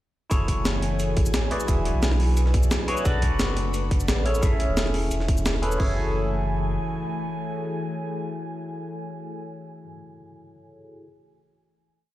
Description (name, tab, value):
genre	liquid drum and bass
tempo	175 BPM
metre	4/4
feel	straight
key	F# minor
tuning	A4 = 440 Hz
part	barky tine electric piano	accompaniment	0.3-11.1 s	C#4 to E5	-30 LUFS	equal	phaser, ping-pong delay
part	airy breathy pad	sustained chords	0.3-9.3 s	E3 to G#5	-32 LUFS	left 1 dB	chorus
part	sub bass with octave	bass	0.3-6.8 s	E1 to B1	-24 LUFS	equal	none
part	breakbeat sampler-style drum kit	drums	0.3-5.8 s	cabasa, hi-hat, snare drum	-29 LUFS	equal	none
part	drum and bass drum kit	drums	0.3-5.9 s	crash cymbal, kick drum	-23 LUFS	equal	none
room	light reverb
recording	played on a big sound system in a bare room, large studio reverb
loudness	-22 LUFS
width	side -15 dB against mid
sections	0.3-5.8 drop; 5.8-8.5 final chord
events	drop 0.3-5.8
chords	0.3 F#m9; 1.5 E9; 3.1 Bm7; 4.3 Amaj7; 5.8 F#m9